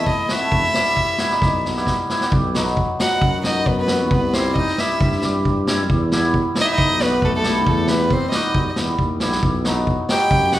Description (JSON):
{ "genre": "klezmer", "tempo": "135 BPM", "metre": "4/4", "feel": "straight", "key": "E harmonic minor", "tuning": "A4 = 441 Hz", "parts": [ { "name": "dark violin", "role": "melody", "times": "0.0-10.6 s", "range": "A4 to G5", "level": "-21 LUFS", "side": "equal", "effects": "none" }, { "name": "cimbalom", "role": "accompaniment", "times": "0.0-10.6 s", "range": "F#3 to G4", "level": "-23 LUFS", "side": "equal", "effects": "none" }, { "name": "mellow tuba", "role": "bass", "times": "0.0-10.6 s", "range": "E1 to G2", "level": "-24 LUFS", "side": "equal", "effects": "none" }, { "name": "street-band drum kit", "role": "drums", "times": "0.1-10.6 s", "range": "kick drum, snare drum", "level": "-21 LUFS", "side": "equal", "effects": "none" }, { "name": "warm clarinet", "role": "second line", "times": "3.0-10.6 s", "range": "A3 to G4", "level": "-26 LUFS", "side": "left 2 dB", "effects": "none" } ], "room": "moderate recital hall reverb, RT60 1.4 s", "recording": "recorded in a church or concert hall", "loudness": "-16 LUFS", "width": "side -14 dB against mid", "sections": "0.0-2.3 A section; 2.3-10.6 B section", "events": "drum fill 1.4-2.3", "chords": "0.0 Am; 0.5 Em; 2.3 B; 4.1 C; 5.9 Em; 9.4 B" }